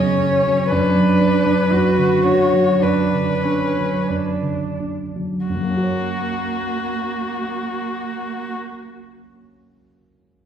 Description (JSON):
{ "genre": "classical, slow romantic movement for piano quartet", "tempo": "41-64 BPM", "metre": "4/4", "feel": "rubato", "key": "F# major", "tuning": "A4 = 440 Hz", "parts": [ { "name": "rich violin", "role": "melody", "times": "0.0-8.6 s", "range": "F#4 to C#5", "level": "-22 LUFS", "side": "left 5 dB", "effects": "none" }, { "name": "warm cello", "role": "second line", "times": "0.0-8.6 s", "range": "A#3 to F#4", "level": "-23 LUFS", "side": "right 2 dB", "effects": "none" }, { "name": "dark concert grand piano", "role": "accompaniment", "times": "0.0-10.5 s", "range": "F#2 to C#5", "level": "-20 LUFS", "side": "right 2 dB", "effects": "none" } ], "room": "wet scoring stage reverb, RT60 1.6 s", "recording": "heard from further back in the room", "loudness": "-17 LUFS", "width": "side -8 dB against mid", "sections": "0.0-5.5 A section; 5.5-10.5 B section", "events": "slowing down 0.0-5.5", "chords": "0.0 F#5; 0.7 Bm/F#; 5.5 F#" }